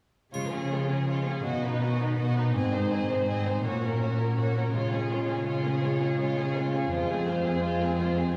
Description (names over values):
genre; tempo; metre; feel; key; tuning
cinematic, heroic adventure film score; 110 BPM (dotted quarters); 12/8; straight; Db major; A4 = 435 Hz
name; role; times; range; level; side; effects
dark symphonic violin section; melody; 0.3-8.4 s; Ab4 to Eb5; -39 LUFS; equal; none
warm symphonic violin section; second line; 0.3-8.4 s; Eb4 to C5; -38 LUFS; equal; none
warm symphonic viola section; accompaniment; 0.3-8.4 s; Ab3 to Eb4; -37 LUFS; equal; none
dark French horn section; sustained chords; 0.3-8.4 s; Eb3 to F4; -37 LUFS; equal; none
concert harp; arpeggios; 0.3-8.4 s; Ab2 to Ab5; -35 LUFS; equal; none
warm symphonic cello section; bass; 0.3-8.4 s; F2 to Db3; -32 LUFS; equal; none
triangle; percussion; 0.3-1.0 s; none; -51 LUFS; equal; none
room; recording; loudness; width
wet scoring stage reverb, RT60 1.8 s; heard from further back in the room, studio ambience; -28 LUFS; mono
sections
0.3-8.4 A section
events
build-up 0.3-8.4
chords
0.3 Db; 1.4 Cb; 2.5 Ab; 3.6 Gb/Bb; 4.7 Db; 6.9 Fm